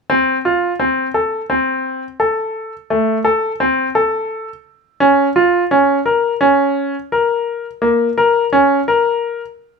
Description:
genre	contemporary instrumental, contemporary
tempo	171 BPM (eighths)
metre	7/8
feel	straight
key	unclear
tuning	A4 = 441 Hz
part	bright grand piano	arpeggios	0.1-9.4 s	A3 to Bb4	-14 LUFS	equal	none
room	moderate studio reverb, RT60 0.5 s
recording	minimal, uncompressed stereo recording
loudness	-14 LUFS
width	side -4 dB against mid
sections	0.1-9.8 A section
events	none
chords	none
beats	| 0.09 0.45 0.80 1.15 1.50 1.85 2.20 | 2.55 2.90 3.26 3.61 3.96 4.31 4.66 | 5.01 5.37 5.72 6.07 6.42 6.77 7.12 | 7.48 7.83 8.18 8.53 8.88 9.23

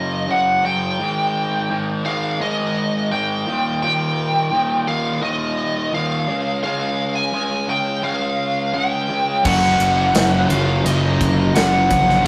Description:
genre	quiet-loud alternative rock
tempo	85 BPM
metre	4/4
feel	straight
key	unclear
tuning	A4 = 440 Hz
part	bluesy overdriven lead guitar	melody	0.0-12.3 s	Eb5 to Ab5	-22 LUFS	equal	distortion
part	fuzz guitar	riff	0.0-12.3 s	Eb2 to Db4	-25 LUFS	equal	distortion
part	distorted electric guitar	riff	9.4-12.3 s	Gb2 to Gb4	-27 LUFS	equal	none
part	fuzz guitar	riff	9.4-12.3 s	Gb2 to Gb3	-23 LUFS	equal	distortion
part	big rock drum kit	drums	9.4-12.2 s	crash cymbal, kick drum, ride cymbal, snare drum	-24 LUFS	equal	none
part	fuzz fingered electric bass	bass	9.5-12.2 s	Gb1 to Bb1	-25 LUFS	equal	overdrive
room	moderate stone room reverb, RT60 1.0 s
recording	rough rehearsal-room recording, tube saturation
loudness	-19 LUFS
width	mono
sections	0.0-12.3 A section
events	none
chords	0.0 Gb5; 1.0 Ab5; 3.5 Eb; 6.3 Db; 9.4 Gb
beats	0.30 | 1.01 1.71 2.42 3.12 | 3.82 4.53 5.23 5.93 | 6.64 7.34 8.04 8.74 | 9.45 10.15 10.85 11.55 | 12.26

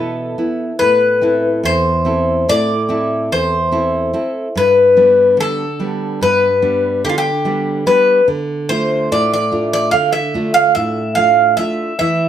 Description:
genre	greek folk, Greek bouzouki band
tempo	144 BPM (eighths)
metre	9/8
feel	straight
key	A minor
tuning	A4 = 440 Hz
part	Greek bouzouki	melody	0.0-12.3 s	F4 to F5	-14 LUFS	left 1 dB	none
part	nylon-string guitar	accompaniment	0.0-12.3 s	E2 to B4	-19 LUFS	right 2 dB	none
room	light reverb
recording	none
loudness	-12 LUFS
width	side -10 dB against mid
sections	0.8-12.3 A section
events	none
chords	0.0 E5; 0.8 Am; 4.6 G; 8.3 Dm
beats	0.37 | 0.79 1.21 1.63 2.05 2.47 2.89 3.30 3.72 4.14 | 4.55 4.97 5.39 5.80 6.22 6.63 7.05 7.46 7.88 | 8.29 8.71 9.12 9.54 9.95 10.36 10.77 11.19 11.60 | 12.01

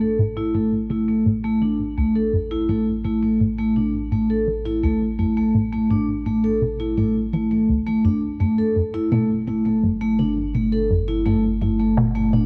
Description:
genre	ambient, sequencer-driven space music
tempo	84 BPM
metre	4/4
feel	straight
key	A minor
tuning	A4 = 440 Hz
part	vibraphone with soft mallets	arpeggios	0.0-12.5 s	A3 to A4	-22 LUFS	equal	low-pass filter, delay
part	resonant blip pluck	riff	0.0-12.5 s	D2 to E3	-27 LUFS	equal	phaser, delay
part	round analog bass	bass	0.0-12.5 s	G1 to A1	-34 LUFS	equal	none
room	wet plate reverb, RT60 2.7 s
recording	dark, warm production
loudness	-21 LUFS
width	mono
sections	0.0-12.5 A section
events	fade-in on analog synth bass 0.0-12.5; filter sweep on synth arpeggio sound 0.0-12.5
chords	0.0 A5; 8.4 G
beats	0.55 1.26 1.98 | 2.69 3.40 4.12 4.83 | 5.55 6.26 6.97 7.69 | 8.40 9.12 9.83 10.55 | 11.26 11.97

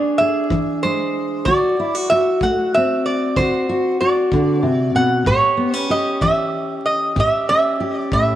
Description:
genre	acoustic country blues, solo or duo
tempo	63 BPM (dotted quarters)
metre	12/8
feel	straight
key	unclear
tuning	A4 = 440 Hz
part	lap resonator guitar	melody	0.0-8.4 s	C5 to F#5	-19 LUFS	right 2 dB	none
part	fingerpicked steel-string acoustic guitar	accompaniment	0.0-8.4 s	E2 to G#4	-18 LUFS	left 1 dB	none
part	kick drum	drums	0.5-8.3 s	none	-26 LUFS	left 1 dB	none
room	moderate echo chamber reverb, RT60 2.4 s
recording	1960s-style stereo, vinyl crackle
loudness	-16 LUFS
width	side -12 dB against mid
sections	0.0-8.4 A section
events	none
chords	0.0 E7; 1.5 D7; 5.3 A7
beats	0.52 | 1.47 2.42 3.38 4.33 | 5.28 6.23 7.18 8.12

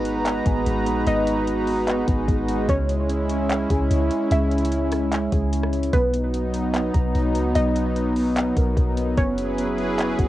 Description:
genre	hip hop, atmospheric cloud-rap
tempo	148 BPM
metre	4/4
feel	half-time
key	unclear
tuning	A4 = 440 Hz
part	warbly dusty pluck	melody	0.0-10.3 s	B4 to E5	-28 LUFS	equal	chorus, low-pass filter, analog delay
part	warm analog pad	sustained chords	0.0-10.3 s	F#3 to A#5	-23 LUFS	equal	chorus, sidechain pumping
part	soft electric-piano-like synth keys	arpeggios	0.0-10.3 s	B3 to A#5	-28 LUFS	right 1 dB	chorus, phaser, low-pass filter, analog delay
part	soft 808-style bass	bass	0.0-10.3 s	F#1 to C#2	-25 LUFS	equal	none
part	smooth R&B drum kit	drums	0.1-10.3 s	handclaps, hi-hat, kick drum, rim click	-25 LUFS	equal	vintage 12-bit sampler grit
room	little or no reverb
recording	home recording on cassette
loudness	-19 LUFS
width	side -14 dB against mid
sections	0.0-10.3 A section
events	none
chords	0.0 G#m7; 2.7 C#m; 5.9 Bmaj7; 9.2 F#7sus4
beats	0.26 0.66 | 1.07 1.47 1.88 2.28 | 2.69 3.09 3.50 3.90 | 4.31 4.71 5.12 5.53 | 5.93 6.34 6.74 7.15 | 7.55 7.96 8.36 8.77 | 9.17 9.58 9.98

